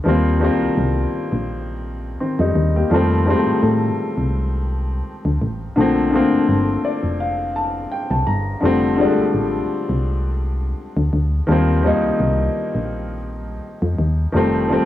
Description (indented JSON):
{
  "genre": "contemporary R&B",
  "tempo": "84 BPM",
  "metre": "4/4",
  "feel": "swing 54% on 16ths",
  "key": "F mixolydian",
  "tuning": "A4 = 440 Hz",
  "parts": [
    { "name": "warm grand piano", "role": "accompaniment", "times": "0.0-14.9 s", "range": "D3 to Bb5", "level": "-19 LUFS", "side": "left 2 dB", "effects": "cassette tape" },
    { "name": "solid FM bass", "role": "bass", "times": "0.1-14.8 s", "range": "F1 to A2", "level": "-20 LUFS", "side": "equal", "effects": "none" }
  ],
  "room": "light reverb, small room reverb",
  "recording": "home recording on cassette",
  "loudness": "-17 LUFS",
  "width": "side -13 dB against mid",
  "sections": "0.0-14.9 A section",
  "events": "grand piano fill 6.5-8.6",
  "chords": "0.1 Eb6; 2.9 F7; 5.8 Bbmaj7; 8.6 F6; 11.5 Eb6; 14.3 F7"
}